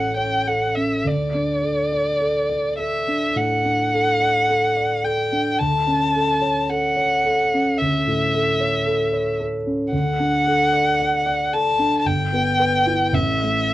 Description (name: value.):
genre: classical, romantic duo for violin and grand piano.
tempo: 49-57 BPM.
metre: 4/4.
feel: rubato.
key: D major.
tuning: A4 = 440 Hz.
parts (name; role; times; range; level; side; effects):
dark violin; melody; 0.0-13.7 s; D5 to A5; -20 LUFS; left 1 dB; none.
dark grand piano; accompaniment; 0.0-13.7 s; G1 to F#5; -21 LUFS; equal; none.
room: light reverb.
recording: worn, warbling old tape, cassette tape, warbly pitch drift.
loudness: -18 LUFS.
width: side -15 dB against mid.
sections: 0.0-13.7 A section.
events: none.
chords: 0.0 A; 1.1 D; 5.6 A/D; 9.9 D; 12.1 Em/G; 13.1 A5.